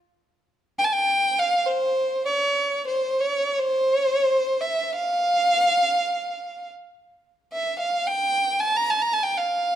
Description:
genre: Arabic maqam ensemble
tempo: free time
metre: none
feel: none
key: F maqam suznak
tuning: A4 = 443 Hz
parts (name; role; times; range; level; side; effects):
- rich violin; solo; 0.8-9.8 s; C5 to Bb5; -20 LUFS; equal; none
room: light reverb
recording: dark, warm production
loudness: -20 LUFS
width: side -10 dB against mid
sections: 0.4-9.8 A section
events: none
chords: none

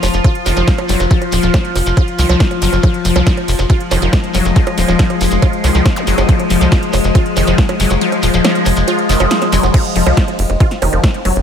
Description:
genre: psychedelic trance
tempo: 139 BPM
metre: 4/4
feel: straight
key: F phrygian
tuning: A4 = 442 Hz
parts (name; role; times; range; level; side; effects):
- overtone-sweeping drone; sustained chords; 0.0-11.4 s; F3 to F4; -17 LUFS; left 3 dB; chorus, built-in reverb, sidechain pumping
- tight sequencer bass; bass; 0.0-11.4 s; Eb1 to C2; -15 LUFS; equal; none
- techno drum kit; drums; 0.0-11.4 s; bongos, crash cymbal, hi-hat, ride cymbal, snare drum; -21 LUFS; right 3 dB; none
- shekere; percussion; 0.0-9.7 s; none; -26 LUFS; left 2 dB; none
- wide unison pluck; riff; 0.2-11.3 s; Eb3 to F4; -19 LUFS; moving between left 4 dB and right 4 dB; auto-pan, sidechain pumping, analog delay
- electronic kick drum; drums; 0.2-11.1 s; none; -12 LUFS; equal; none
- zap; sound effects; 6.0-6.1 s; none; -26 LUFS; equal; none
room: light reverb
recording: none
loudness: -11 LUFS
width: side -8 dB against mid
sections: 0.0-9.7 A section; 9.7-11.4 A section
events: drop 0.0-9.7, 9.7-11.4; kick drops out 8.0-9.7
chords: 0.0 F5

